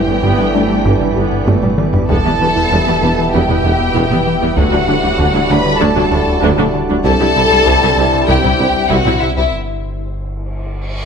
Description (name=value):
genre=cinematic, hybrid orchestral and electronic film score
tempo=97 BPM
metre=4/4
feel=straight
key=unclear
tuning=A4 = 438 Hz
part: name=warm studio violin section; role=melody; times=0.0-9.5 s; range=E5 to B5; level=-18 LUFS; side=left 2 dB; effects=none
part: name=rich chamber violin section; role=second line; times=0.0-9.5 s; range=E4 to B4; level=-20 LUFS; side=left 3 dB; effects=none
part: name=glassy FM pad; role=sustained chords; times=0.0-9.5 s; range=G3 to E5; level=-23 LUFS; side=equal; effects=ensemble chorus, built-in reverb
part: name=mellow French horn section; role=sustained chords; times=0.0-9.5 s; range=B3 to F#4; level=-23 LUFS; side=left 3 dB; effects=none
part: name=warm trombone section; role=sustained chords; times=0.0-9.5 s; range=G2 to G3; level=-22 LUFS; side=right 5 dB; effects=none
part: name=tight sequenced synth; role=arpeggios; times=0.0-9.5 s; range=C3 to G4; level=-26 LUFS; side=left 1 dB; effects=none
part: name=rubbery square bass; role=riff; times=0.0-9.5 s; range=C2 to G3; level=-20 LUFS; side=left 3 dB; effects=none
part: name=sub bass with octave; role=bass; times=0.0-11.1 s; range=D1 to C2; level=-24 LUFS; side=equal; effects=none
part: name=rich symphonic viola section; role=accompaniment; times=0.1-9.4 s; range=F#3 to E4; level=-21 LUFS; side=right 1 dB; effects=none
part: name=rich symphonic cello section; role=bass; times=0.1-9.4 s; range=C2 to G2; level=-22 LUFS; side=right 3 dB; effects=none
part: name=warm studio double bass section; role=bass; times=0.2-9.0 s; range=E1 to D2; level=-22 LUFS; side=right 3 dB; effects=none
part: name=warm tuba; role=bass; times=0.2-9.0 s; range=E1 to D2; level=-23 LUFS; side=right 5 dB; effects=none
part: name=taiko ensemble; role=drums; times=1.0-9.3 s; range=none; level=-21 LUFS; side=equal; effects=none
part: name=cymbal swell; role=sound effects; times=10.2-11.1 s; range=none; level=-32 LUFS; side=right 1 dB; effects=none
room=moderate scoring stage reverb, RT60 1.5 s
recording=close, detailed microphones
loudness=-11 LUFS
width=side -6 dB against mid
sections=0.0-11.1 A section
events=drum fill 1.5-2.1; break 9.5-11.1; cymbal swell 10.2-11.1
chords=0.0 Gadd9; 2.1 Em; 4.6 D; 7.0 C; 9.5 N.C.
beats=0.24 0.86 1.48 | 2.10 2.72 3.34 3.96 | 4.57 5.19 5.81 6.43 | 7.05 7.67 8.29 8.90 | 9.52 10.14 10.76